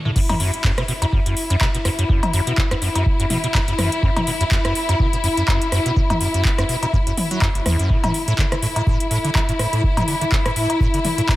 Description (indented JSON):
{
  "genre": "acid house",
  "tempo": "124 BPM",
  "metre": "4/4",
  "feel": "swing 56% on 16ths",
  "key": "F# minor",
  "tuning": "A4 = 440 Hz",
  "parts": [
    { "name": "liquid acid bass", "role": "riff", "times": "0.1-11.4 s", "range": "F#1 to F#3", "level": "-22 LUFS", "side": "equal", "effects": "chorus, tube saturation, sidechain pumping, analog delay" },
    { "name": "electro analog drum machine", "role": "drums", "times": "0.1-11.4 s", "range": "cowbell, crash cymbal, handclaps, hi-hat, rim click, toms", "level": "-24 LUFS", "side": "equal", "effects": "overdrive" },
    { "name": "rich studio string section", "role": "sustained chords", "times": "0.2-11.4 s", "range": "E4", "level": "-24 LUFS", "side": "left 2 dB", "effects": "sidechain pumping" },
    { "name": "electronic kick drum", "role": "drums", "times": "0.2-11.4 s", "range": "none", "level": "-20 LUFS", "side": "equal", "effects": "overdrive" }
  ],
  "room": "light reverb, digital ambience",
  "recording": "none",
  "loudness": "-17 LUFS",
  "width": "side -16 dB against mid",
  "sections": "0.2-11.4 A section",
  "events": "break 0.0; drum fill 0.0; drop 0.2-11.4",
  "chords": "0.2 F#7(no3); 7.9 A5"
}